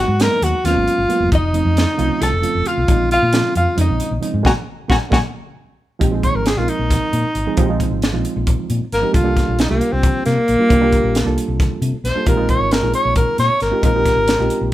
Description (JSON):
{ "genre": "electric jazz fusion", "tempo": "268 BPM (eighths)", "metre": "7/8", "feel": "straight", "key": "unclear", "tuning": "A4 = 440 Hz", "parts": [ { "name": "breathy alto saxophone", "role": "melody", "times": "0.0-14.7 s", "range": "Bb3 to Db5", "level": "-18 LUFS", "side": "equal", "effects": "none" }, { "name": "archtop guitar, miked and amplified", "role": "second line", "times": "0.0-5.2 s", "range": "Eb5 to Bb5", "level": "-25 LUFS", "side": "left 3 dB", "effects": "none" }, { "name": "reed electric piano", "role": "accompaniment", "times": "0.0-14.7 s", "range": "Db3 to Bb4", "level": "-22 LUFS", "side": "right 4 dB", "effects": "none" }, { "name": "hollow-body short-scale fingered electric bass", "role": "bass", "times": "0.0-14.7 s", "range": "F1 to C3", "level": "-20 LUFS", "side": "left 1 dB", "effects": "none" }, { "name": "crisp fusion drum kit", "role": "drums", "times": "0.2-14.6 s", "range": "hi-hat, kick drum, snare drum", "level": "-20 LUFS", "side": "equal", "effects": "none" } ], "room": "light reverb", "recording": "band playing live in one room", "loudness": "-14 LUFS", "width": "side -14 dB against mid", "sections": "0.0-6.0 A section; 6.0-14.7 B section", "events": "band accent 4.5-6.0; drum fill 5.3-6.0; alto saxophone solo 6.0-14.7", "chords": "0.0 Abm9; 1.3 F7b13; 2.9 Bbm11; 4.5 Gbadd9/Bb; 6.0 Bb9sus4; 9.1 C13sus4; 12.3 Bb13sus4", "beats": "0.20 0.42 0.65 0.87 1.10 | 1.32 1.54 1.77 1.99 2.21 2.44 2.66 | 2.88 3.11 3.33 3.56 3.78 4.00 4.23 | 4.45 4.67 4.90 5.12 5.34 5.57 5.79 | 6.01 6.24 6.46 6.68 6.91 7.13 7.36 | 7.58 7.80 8.03 8.25 8.47 8.70 8.92 | 9.14 9.37 9.59 9.81 10.04 10.26 10.48 | 10.71 10.93 11.15 11.38 11.60 11.82 12.05 | 12.27 12.49 12.71 12.94 13.16 13.38 13.61 | 13.83 14.05 14.28 14.50 14.72" }